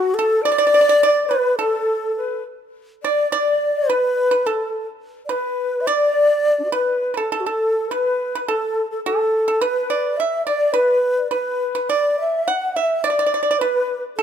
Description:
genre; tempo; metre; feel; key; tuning
chinese traditional, Chinese chamber ensemble; 105 BPM; 2/4; rubato; D gong mode; A4 = 440 Hz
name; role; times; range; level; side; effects
xiao; melody; 0.0-14.2 s; F#4 to F#5; -19 LUFS; right 1 dB; none
breathy xiao; second line; 0.0-14.2 s; D4 to F#5; -23 LUFS; left 7 dB; none
pipa; second line; 0.0-14.2 s; F#4 to F#5; -24 LUFS; right 6 dB; none
room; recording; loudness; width
light reverb; close, detailed microphones; -17 LUFS; side -8 dB against mid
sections
0.0-7.3 A section; 7.3-14.2 B section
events
none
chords
none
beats
| 0.45 1.01 | 1.58 2.16 | 2.74 3.32 | 3.89 4.46 | 5.02 5.59 | 6.15 6.73 | 7.31 7.89 | 8.47 9.04 | 9.61 10.17 | 10.73 11.31 | 11.89 12.47 | 13.04 13.60 | 14.16

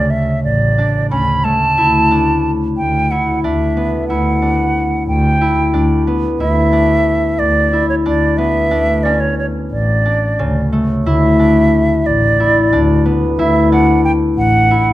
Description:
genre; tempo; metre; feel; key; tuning
contemporary instrumental, chamber music in an uneven meter; 182 BPM (eighths); 7/8; straight; D major; A4 = 439 Hz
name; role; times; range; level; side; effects
hollow concert flute; melody; 0.0-14.9 s; C#5 to B5; -16 LUFS; right 2 dB; none
concert harp; arpeggios; 0.0-14.9 s; C#3 to E4; -16 LUFS; left 2 dB; none
warm double bass; bass; 0.0-14.9 s; A1 to D2; -16 LUFS; equal; none
room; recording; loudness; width
light reverb; close, detailed microphones; -12 LUFS; side -14 dB against mid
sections
0.0-11.1 A section; 11.1-14.9 B section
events
none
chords
0.0 Dmaj7(no3); 1.8 G/D (rootless); 8.7 D5; 11.1 Dsus2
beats
0.12 0.45 0.78 1.11 1.45 | 1.78 2.11 2.44 2.78 3.11 3.44 3.77 | 4.10 4.42 4.75 5.08 5.41 5.74 6.07 | 6.40 6.73 7.07 7.40 7.73 8.05 8.38 | 8.71 9.05 9.38 9.71 10.05 10.38 10.72 | 11.05 11.39 11.73 12.06 12.39 12.72 13.05 | 13.38 13.71 14.04 14.37 14.70

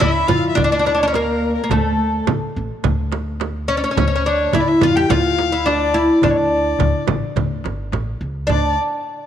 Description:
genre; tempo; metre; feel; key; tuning
Arabic maqam ensemble; 106 BPM; 4/4; straight; D maqam nahawand; A4 = 440 Hz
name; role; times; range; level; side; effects
oud; melody; 0.0-8.7 s; A3 to G4; -18 LUFS; equal; none
dark violin; second line; 0.0-8.8 s; A4 to G5; -24 LUFS; left 9 dB; none
upright bass; bass; 0.0-8.8 s; G1 to F2; -23 LUFS; equal; none
darbuka; percussion; 0.0-8.8 s; none; -26 LUFS; left 8 dB; none
frame drum; percussion; 0.0-8.8 s; none; -23 LUFS; right 8 dB; none
room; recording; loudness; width
moderate plate reverb, RT60 2.7 s; 1960s-style stereo with parts hard left and right; -15 LUFS; side -10 dB against mid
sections
0.0-8.5 A section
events
none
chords
none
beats
0.01 0.58 1.14 | 1.71 2.27 2.84 3.40 | 3.97 4.54 5.10 5.67 | 6.23 6.80 7.36 7.93 | 8.49

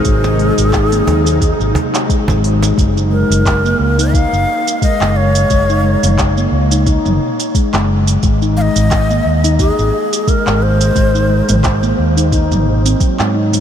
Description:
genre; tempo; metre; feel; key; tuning
organic downtempo; 88 BPM; 4/4; swing 56% on 16ths; unclear; A4 = 442 Hz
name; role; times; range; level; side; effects
breathy bright low ney; melody; 0.0-12.0 s; Ab4 to F5; -18 LUFS; left 1 dB; analog delay
bowed-like drone; sustained chords; 0.0-2.7 s; C3 to Eb4; -21 LUFS; left 2 dB; built-in reverb, sidechain pumping
organic electronic drum kit; drums; 0.0-13.6 s; handclaps, hi-hat, shaker, toms; -21 LUFS; right 1 dB; none
handpan; arpeggios; 0.1-13.6 s; Gb3 to Eb4; -18 LUFS; left 2 dB; analog delay
fretless electric bass; bass; 0.1-13.6 s; Gb1 to Ab2; -14 LUFS; equal; lush chorus, sidechain pumping
electronic kick drum; drums; 0.1-13.2 s; none; -15 LUFS; equal; none
cajon; percussion; 0.2-2.7 s; none; -23 LUFS; right 2 dB; none
room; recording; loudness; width
moderate huge ambient reverb, RT60 9.4 s; dreamy mix soaked in reverb; -11 LUFS; side -9 dB against mid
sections
0.0-2.8 A section; 2.8-13.6 B section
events
none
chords
0.0 Ab7; 2.8 Gb5; 8.2 Ab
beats
| 0.05 0.73 1.42 2.10 | 2.78 3.46 4.14 4.83 | 5.51 6.19 6.87 7.55 | 8.23 8.92 9.60 10.28 | 10.96 11.64 12.32 13.01

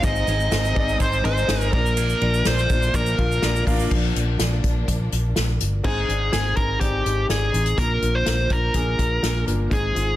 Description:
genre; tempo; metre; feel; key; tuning
piano-driven pop; 124 BPM; 4/4; straight; unclear; A4 = 440 Hz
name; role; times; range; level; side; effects
warm upright piano; accompaniment; 0.0-10.2 s; Ab2 to F5; -28 LUFS; left 2 dB; none
warm studio string section; sustained chords; 0.0-5.8 s; F3 to Eb4; -34 LUFS; left 1 dB; none
vintage muted fingered electric bass; bass; 0.0-10.2 s; G1 to Bb1; -23 LUFS; equal; none
unplugged drum kit; drums; 0.0-10.1 s; crash cymbal, hi-hat, kick drum, ride cymbal, snare drum; -25 LUFS; equal; soft clipping on snare
tube shaker; percussion; 0.0-3.9 s; none; -38 LUFS; right 8 dB; none
dark smooth lead guitar; melody; 0.1-10.2 s; G4 to Eb5; -24 LUFS; equal; overdrive
room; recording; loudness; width
light reverb, small room ambience; dense, heavily limited modern master; -19 LUFS; side -14 dB against mid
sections
0.0-3.9 A section; 3.9-5.8 B section; 5.8-10.2 C section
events
upright piano solo 3.9-5.8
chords
0.0 Ab; 1.7 Bb; 5.8 Ab; 7.8 Bb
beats
| 0.04 0.52 1.00 1.49 | 1.97 2.46 2.94 3.42 | 3.91 4.39 4.88 5.36 | 5.84 6.33 6.81 7.30 | 7.78 8.26 8.75 9.23 | 9.71

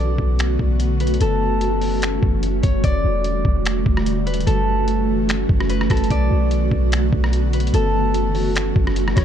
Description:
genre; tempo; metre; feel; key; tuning
hip hop, atmospheric cloud-rap; 147 BPM; 4/4; half-time; E dorian; A4 = 439 Hz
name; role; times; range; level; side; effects
Celtic harp; melody; 0.0-9.2 s; A4 to D5; -26 LUFS; left 3 dB; ping-pong delay
ethereal airy pad; sustained chords; 0.0-9.2 s; D3 to F#4; -22 LUFS; right 2 dB; ensemble chorus, built-in reverb, sidechain pumping
clean 808-style bass; bass; 0.0-9.2 s; E1 to B1; -20 LUFS; equal; none
trip hop sampler-style drum kit; drums; 0.2-9.2 s; finger snaps, hi-hat, kick drum, rim click; -22 LUFS; equal; none
room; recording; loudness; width
little or no reverb; dark, warm production; -16 LUFS; side -9 dB against mid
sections
0.0-2.8 A section; 2.8-9.2 B section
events
none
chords
0.0 Bm7; 1.2 F#m7; 2.8 Em11; 4.5 F#m7; 6.1 Bm7; 7.7 F#m7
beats
0.39 0.80 | 1.21 1.62 2.02 2.43 | 2.84 3.25 3.66 4.07 | 4.47 4.88 5.29 5.70 | 6.11 6.51 6.92 7.33 | 7.74 8.15 8.55 8.96

